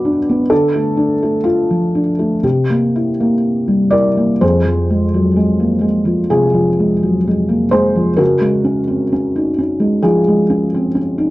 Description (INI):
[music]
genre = neoclassical minimalist piano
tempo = 60-66 BPM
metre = 4/4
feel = rubato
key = F phrygian from 4.4 s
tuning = A4 = 440 Hz
[part]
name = felt-muted upright piano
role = solo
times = 0.0-11.3 s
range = F2 to D6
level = -12 LUFS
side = equal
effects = none
[sound]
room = light reverb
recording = worn, warbling old tape, cassette tape, warbly pitch drift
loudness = -12 LUFS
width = side -18 dB against mid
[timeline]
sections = 0.0-4.4 A section; 4.4-11.3 B section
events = none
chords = 0.0 Bm; 0.5 Dm; 2.4 C7; 4.4 Fm; 8.2 Db